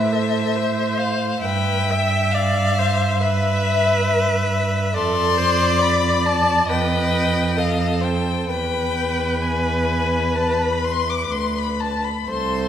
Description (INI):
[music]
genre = classical, slow romantic movement for string quartet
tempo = 62-70 BPM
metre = 4/4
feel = rubato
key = unclear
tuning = A4 = 441 Hz
[part]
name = rich violin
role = melody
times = 0.0-12.7 s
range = E5 to D6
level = -23 LUFS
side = left 6 dB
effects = none
[part]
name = rich violin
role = second line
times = 0.0-12.7 s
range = B4 to E5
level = -24 LUFS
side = left 2 dB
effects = none
[part]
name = rich viola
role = accompaniment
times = 0.0-12.7 s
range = A4 to E5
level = -25 LUFS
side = right 2 dB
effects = none
[part]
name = rich cello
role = bass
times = 0.0-12.7 s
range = C2 to A2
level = -22 LUFS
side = right 3 dB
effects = none
[sound]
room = wet recital hall reverb, RT60 1.7 s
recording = none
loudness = -18 LUFS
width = side -9 dB against mid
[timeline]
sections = 0.0-12.7 A section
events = none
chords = 0.0 Am; 1.4 Em/G; 4.9 Dm/F; 6.7 F7; 8.5 E